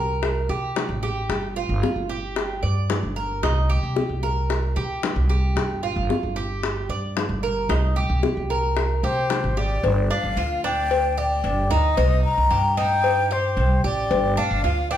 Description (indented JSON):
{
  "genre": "latin, Cuban son and guajira",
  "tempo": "112 BPM",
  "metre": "4/4",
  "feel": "straight",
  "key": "G minor",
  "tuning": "A4 = 439 Hz",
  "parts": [
    { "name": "Cuban tres", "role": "arpeggios", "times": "0.0-15.0 s", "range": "D4 to D5", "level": "-26 LUFS", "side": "right 2 dB", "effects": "none" },
    { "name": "upright bass", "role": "bass", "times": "0.0-15.0 s", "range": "G1 to C3", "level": "-23 LUFS", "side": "equal", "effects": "none" },
    { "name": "bongos and cowbell", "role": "percussion", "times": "0.2-15.0 s", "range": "none", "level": "-27 LUFS", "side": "left 4 dB", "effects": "none" },
    { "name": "breathy concert flute", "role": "melody", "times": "9.0-15.0 s", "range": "C5 to Bb5", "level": "-24 LUFS", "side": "left 2 dB", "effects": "none" }
  ],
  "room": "moderate large studio reverb, RT60 0.8 s",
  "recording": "heard from further back in the room",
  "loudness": "-20 LUFS",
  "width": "side -10 dB against mid",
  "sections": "0.0-9.8 A section; 9.8-15.0 B section",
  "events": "none",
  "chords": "0.0 C7(no3); 1.3 Gm7; 3.4 Cm7; 5.6 Gm7; 7.7 Cm7; 9.8 G5; 12.0 Cm7; 14.1 G5"
}